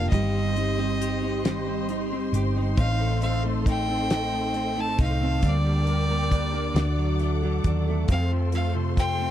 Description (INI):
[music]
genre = six-eight pop ballad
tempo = 45 BPM (dotted quarters)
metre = 6/8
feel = straight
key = unclear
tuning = A4 = 442 Hz
[part]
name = bright violin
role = melody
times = 0.0-9.3 s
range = D5 to A5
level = -30 LUFS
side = left 1 dB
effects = tape echo
[part]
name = direct-recorded clean electric guitar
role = accompaniment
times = 0.0-9.3 s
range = F2 to G4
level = -29 LUFS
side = equal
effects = double-tracked left and right
[part]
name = warm studio string section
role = sustained chords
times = 0.0-9.3 s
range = G4 to D6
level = -36 LUFS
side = left 2 dB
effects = none
[part]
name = picked steel-string acoustic guitar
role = arpeggios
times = 0.0-9.3 s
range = G2 to Bb4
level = -34 LUFS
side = right 4 dB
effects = none
[part]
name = hollow-body short-scale fingered electric bass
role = bass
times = 0.0-9.3 s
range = G1 to F2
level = -26 LUFS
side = equal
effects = none
[part]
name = damped 70s drum kit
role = drums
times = 0.1-9.2 s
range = hi-hat, kick drum, snare drum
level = -23 LUFS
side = equal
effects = none
[sound]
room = little or no reverb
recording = dry, close 1970s-style studio recording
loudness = -22 LUFS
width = side -11 dB against mid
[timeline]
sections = 0.0-9.3 A section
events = none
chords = 0.1 Cm/G; 2.8 Adim; 5.4 Gm/D; 6.8 D; 8.1 F